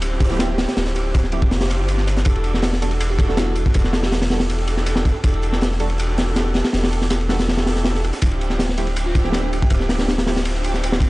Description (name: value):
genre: drum and bass, jungle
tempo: 161 BPM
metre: 4/4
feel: straight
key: E phrygian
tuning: A4 = 440 Hz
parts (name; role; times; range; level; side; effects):
- dark studio string section; sustained chords; 0.0-11.1 s; F3 to A4; -27 LUFS; right 1 dB; none
- soft dub sub bass; bass; 0.0-11.1 s; D1 to G1; -22 LUFS; equal; none
- crunchy breakbeat drum kit; drums; 0.0-11.1 s; hi-hat, kick drum, ride cymbal, snare drum; -20 LUFS; equal; none
- crunchy breakbeat drum kit; drums; 0.0-11.1 s; hi-hat, snare drum; -36 LUFS; right 2 dB; none
- deep mellow chord stab; stabs; 0.3-10.3 s; F3 to A4; -30 LUFS; right 3 dB; chorus, dub echo
- bell-like FM electric piano; melody; 3.1-4.6, 9.1-10.1 s; D4 to G4; -32 LUFS; right 1 dB; none
room: studio reverb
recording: dry, gritty hardware recording, nothing above 10.5 kHz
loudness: -17 LUFS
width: side -20 dB against mid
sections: 0.0-11.1 A section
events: kick drops out 1.5-2.3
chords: 0.0 Dm11; 2.3 Em11; 8.2 Dm11